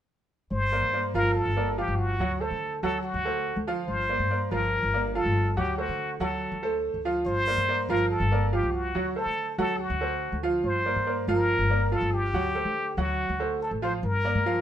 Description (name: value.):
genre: latin, Cuban son and guajira.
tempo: 142 BPM.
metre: 4/4.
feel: straight.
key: G minor.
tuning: A4 = 441 Hz.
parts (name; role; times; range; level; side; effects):
trumpet with plunger mute; melody; 0.5-14.6 s; F#4 to C5; -28 LUFS; left 1 dB; none.
upright bass; bass; 0.5-14.6 s; G1 to D3; -30 LUFS; left 1 dB; none.
bright baby grand piano; arpeggios; 0.7-14.6 s; F3 to F#5; -29 LUFS; right 2 dB; none.
room: moderate studio reverb, RT60 0.7 s.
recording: minimal, uncompressed stereo recording.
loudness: -24 LUFS.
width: side -10 dB against mid.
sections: 0.5-14.0 A section.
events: none.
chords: 0.5 Gm7; 2.2 D7; 3.9 Gm7; 5.6 D7; 7.3 Gm7; 8.9 D7; 10.6 Gm7; 12.3 D7; 14.0 Gm7.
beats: | 0.51 0.93 1.35 1.77 | 2.20 2.62 3.04 3.46 | 3.88 4.30 4.72 5.14 | 5.57 5.99 6.41 6.83 | 7.26 7.68 8.10 8.52 | 8.95 9.37 9.79 10.22 | 10.64 11.06 11.49 11.91 | 12.34 12.76 13.18 13.61 | 14.03 14.46.